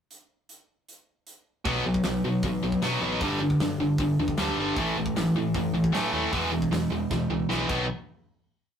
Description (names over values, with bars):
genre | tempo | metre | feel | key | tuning
punk rock | 154 BPM | 4/4 | straight | unclear | A4 = 440 Hz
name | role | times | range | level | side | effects
big rock drum kit | drums | 0.1-7.8 s | crash cymbal, hi-hat, kick drum, snare drum | -34 LUFS | equal | none
distorted electric guitar | riff | 1.6-7.9 s | G2 to D#4 | -27 LUFS | right 4 dB | overdrive
biting overdriven guitar | riff | 1.7-7.9 s | E2 to B3 | -27 LUFS | left 4 dB | none
overdriven picked electric bass | bass | 1.7-7.9 s | E1 to B2 | -35 LUFS | left 1 dB | none
room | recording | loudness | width
moderate studio reverb, RT60 0.6 s | rough rehearsal-room recording, tube saturation | -24 LUFS | side -8 dB against mid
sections
0.1-1.7 pickup bar; 1.7-7.9 verse; 7.9-8.8 final hit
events
drum fill 7.1-7.9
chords
0.1 N.C.; 1.7 B5; 3.2 G5; 4.8 A5; 6.3 E; 7.7 B; 7.9 N.C.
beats
| 0.11 0.50 0.89 1.27 | 1.66 2.05 2.43 2.82 | 3.21 3.60 3.99 4.38 | 4.77 5.16 5.55 5.94 | 6.33 6.72 7.11 7.50